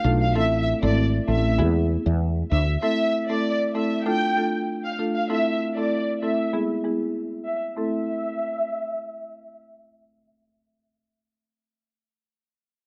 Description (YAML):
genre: dancehall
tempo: 97 BPM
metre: 4/4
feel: straight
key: A harmonic minor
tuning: A4 = 441 Hz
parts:
  - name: marimba with medium mallets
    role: accompaniment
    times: 0.0-11.1 s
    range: G#3 to A4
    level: -28 LUFS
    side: equal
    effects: none
  - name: woody fretless electric bass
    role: bass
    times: 0.0-2.8 s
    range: G#1 to E2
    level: -24 LUFS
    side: equal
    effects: ensemble chorus
  - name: warm studio violin section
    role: melody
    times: 0.2-9.6 s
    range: D5 to G5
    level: -28 LUFS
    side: equal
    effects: none
room: light reverb, small room ambience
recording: worn, warbling old tape, cassette tape, warbly pitch drift, low-pass filter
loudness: -24 LUFS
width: mono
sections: 0.0-2.8 A section; 2.8-7.8 B section; 7.8-10.2 C section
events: filter sweep 2.8-7.8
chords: 0.3 Am; 1.6 E; 2.8 Am; 4.1 Dm; 5.3 Am; 6.5 E; 7.8 Am